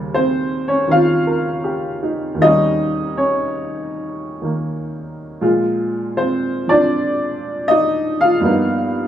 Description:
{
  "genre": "solo jazz",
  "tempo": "80 BPM",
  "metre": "4/4",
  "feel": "swing 69% on 8ths",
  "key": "unclear",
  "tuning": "A4 = 440 Hz",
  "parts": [
    { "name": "warm upright piano", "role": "solo", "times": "0.0-9.1 s", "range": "Eb2 to F5", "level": "-16 LUFS", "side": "equal", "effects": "none" }
  ],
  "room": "moderate club reverb, RT60 0.5 s",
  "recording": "none",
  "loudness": "-15 LUFS",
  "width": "side -10 dB against mid",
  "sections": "0.0-9.1 A section",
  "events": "none",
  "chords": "0.0 Eb7; 5.4 Bb7; 8.4 G7alt",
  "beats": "0.14 0.89 1.64 | 2.40 3.15 3.90 4.66 | 5.41 6.16 6.92 7.67 | 8.43"
}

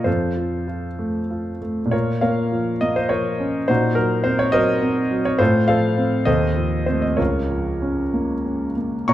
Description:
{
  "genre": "classical, romantic character piece for solo piano",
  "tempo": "63-71 BPM (dotted quarters)",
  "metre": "6/8",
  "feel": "rubato",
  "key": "Bb minor",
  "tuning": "A4 = 439 Hz",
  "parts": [
    { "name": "warm concert grand piano", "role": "solo", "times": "0.0-9.1 s", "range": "Db2 to Db6", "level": "-18 LUFS", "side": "equal", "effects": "none" }
  ],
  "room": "moderate recital hall reverb, RT60 1.7 s",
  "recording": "dark, warm production",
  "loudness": "-18 LUFS",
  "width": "side -13 dB against mid",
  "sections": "0.0-9.1 A section",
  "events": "none",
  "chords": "0.1 F; 1.9 Bbm; 3.7 Cm7b5/Bb; 5.4 F/A; 6.3 F7/Eb; 7.2 Bbm/Db",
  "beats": "| 0.07 1.00 | 1.93 2.82 | 3.69 4.54 | 5.40 6.27 | 7.19 8.13 | 9.07"
}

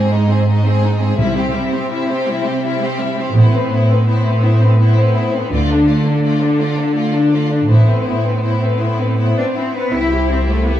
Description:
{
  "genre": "cinematic",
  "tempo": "111 BPM (dotted quarters)",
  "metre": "12/8",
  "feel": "straight",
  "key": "C major",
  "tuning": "A4 = 442 Hz",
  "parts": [
    { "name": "warm symphonic violin section", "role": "melody", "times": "0.0-10.8 s", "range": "A4 to E5", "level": "-26 LUFS", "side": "left 4 dB", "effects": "none" },
    { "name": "bright symphonic violin section", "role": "second line", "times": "0.0-10.8 s", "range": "B3 to Ab4", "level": "-22 LUFS", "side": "left 5 dB", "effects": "none" },
    { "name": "rich symphonic viola section", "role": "accompaniment", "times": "0.0-10.8 s", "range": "G3 to G4", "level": "-21 LUFS", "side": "right 1 dB", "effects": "none" },
    { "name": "clear symphonic cello section", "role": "bass", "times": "0.0-10.8 s", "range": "Ab2 to E4", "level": "-16 LUFS", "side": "right 1 dB", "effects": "none" },
    { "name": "rich symphonic double bass section", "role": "bass", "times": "1.2-10.8 s", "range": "A1 to D2", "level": "-16 LUFS", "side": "right 1 dB", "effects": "none" },
    { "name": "timpani", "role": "percussion", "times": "1.2-1.7 s", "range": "C3", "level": "-24 LUFS", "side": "left 2 dB", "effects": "none" }
  ],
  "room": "moderate scoring stage reverb, RT60 1.6 s",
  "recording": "studio reverb",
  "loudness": "-13 LUFS",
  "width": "side -12 dB against mid",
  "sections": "0.0-9.9 A section",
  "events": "build-up 0.0-9.9",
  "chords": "0.0 Ab; 1.2 C; 3.3 Amadd9; 5.5 Dm; 7.7 Amadd9; 9.9 C",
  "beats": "0.12 0.66 | 1.20 1.73 2.27 2.81 | 3.35 3.88 4.42 4.96 | 5.50 6.05 6.59 7.14 | 7.70 8.26 8.82 9.38 | 9.93 10.48"
}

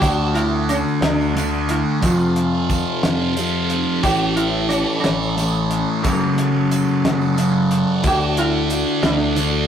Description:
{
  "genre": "psychedelic rock",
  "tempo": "60 BPM (dotted quarters)",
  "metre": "6/8",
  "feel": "straight",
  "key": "unclear",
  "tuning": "A4 = 440 Hz",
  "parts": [
    { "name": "sitar", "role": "melody", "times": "0.0-9.7 s", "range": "A3 to F#4", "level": "-24 LUFS", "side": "right 2 dB", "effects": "none" },
    { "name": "combo organ", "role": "sustained chords", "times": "0.0-9.7 s", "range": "A4 to A5", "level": "-30 LUFS", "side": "right 2 dB", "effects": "spring reverb" },
    { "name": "thick fuzz guitar", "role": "riff", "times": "0.0-9.7 s", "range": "F2 to D4", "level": "-19 LUFS", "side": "left 1 dB", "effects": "distortion, phaser" },
    { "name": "picked electric bass", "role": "bass", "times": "0.0-9.7 s", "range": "F#1 to F2", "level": "-23 LUFS", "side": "equal", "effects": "none" },
    { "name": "cloth-damped thuddy drum kit", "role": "drums", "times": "0.0-9.5 s", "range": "hi-hat, kick drum, snare drum", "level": "-23 LUFS", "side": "equal", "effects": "none" },
    { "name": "tambourine", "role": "percussion", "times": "0.0-9.5 s", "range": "none", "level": "-37 LUFS", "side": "right 6 dB", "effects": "none" }
  ],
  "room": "light reverb",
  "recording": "rough rehearsal-room recording",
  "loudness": "-16 LUFS",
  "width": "side -8 dB against mid",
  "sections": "0.0-9.7 A section",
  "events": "none",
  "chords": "0.0 D; 2.0 F; 4.0 A; 6.0 F#m; 8.0 D",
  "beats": "| 0.02 1.03 | 2.03 3.04 | 4.04 5.04 | 6.04 7.03 | 8.03 9.03"
}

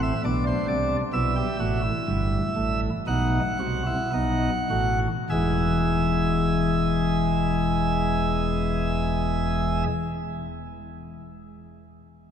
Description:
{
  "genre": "classical, baroque-style 3-part fugue for pipe organ",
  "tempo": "50-70 BPM",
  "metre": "4/4",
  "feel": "straight",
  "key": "unclear",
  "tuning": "A4 = 440 Hz",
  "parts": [
    { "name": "chamber organ, principal chorus", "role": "solo", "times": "0.0-9.9 s", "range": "E1 to F#5", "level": "-22 LUFS", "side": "equal", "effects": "none" }
  ],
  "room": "wet cathedral reverb, RT60 5.3 s",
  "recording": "minimal, uncompressed stereo recording",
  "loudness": "-22 LUFS",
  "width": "side -8 dB against mid",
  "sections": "0.0-5.3 A section; 5.3-10.1 B section",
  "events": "slowing down 0.0-5.3",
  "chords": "0.0 Am; 1.1 Em; 3.1 B7; 5.3 E",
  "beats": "0.25 | 1.14 2.08 3.08 4.14 | 5.30 6.51 7.71 8.91"
}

